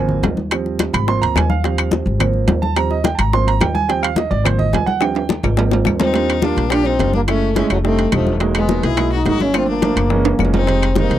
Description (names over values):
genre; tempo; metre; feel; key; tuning
Afro-Cuban jazz; 213 BPM; 4/4; straight; Eb major; A4 = 444 Hz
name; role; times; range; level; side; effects
warm baby grand piano; accompaniment; 0.0-11.2 s; Eb3 to C6; -20 LUFS; right 6 dB; none
upright bass; bass; 0.0-11.2 s; Fb1 to Eb2; -19 LUFS; left 1 dB; none
congas; percussion; 0.1-11.2 s; none; -24 LUFS; left 2 dB; none
bongos; percussion; 0.2-11.2 s; none; -24 LUFS; left 9 dB; none
timbales; percussion; 0.2-11.2 s; none; -23 LUFS; right 6 dB; none
claves; percussion; 0.5-11.0 s; none; -25 LUFS; left 22 dB; none
breathy trombone; melody; 6.0-11.2 s; F3 to E4; -19 LUFS; left 1 dB; none
clear fiddle; second line; 6.0-11.2 s; A3 to G#4; -26 LUFS; left 11 dB; none
room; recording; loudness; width
light reverb; dry, close 1970s-style studio recording; -14 LUFS; side -12 dB against mid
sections
0.0-6.1 A section; 6.1-11.2 B section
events
grand piano solo 0.0-6.1; drum fill 5.0-6.1, 10.3-10.7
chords
0.0 Ab69; 0.5 Eb69; 1.1 Ab69; 1.6 Eb69; 2.2 Ab69; 2.8 Eb69; 3.3 Ab69; 3.9 Eb69; 4.5 Ab69; 5.0 Eb69; 5.6 Ab69; 6.1 Ebmaj7; 7.3 Gbm7; 7.8 F13; 8.4 Emaj9#11; 9.5 Gm9; 10.1 Gb9; 10.7 Fm9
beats
0.23 | 0.52 0.80 1.08 1.36 | 1.64 1.92 2.20 2.48 | 2.77 3.05 3.33 3.61 | 3.89 4.17 4.46 4.74 | 5.02 5.30 5.58 5.86 | 6.14 6.43 6.71 6.99 | 7.28 7.56 7.84 8.12 | 8.41 8.69 8.98 9.26 | 9.54 9.83 10.11 10.39 | 10.68 10.96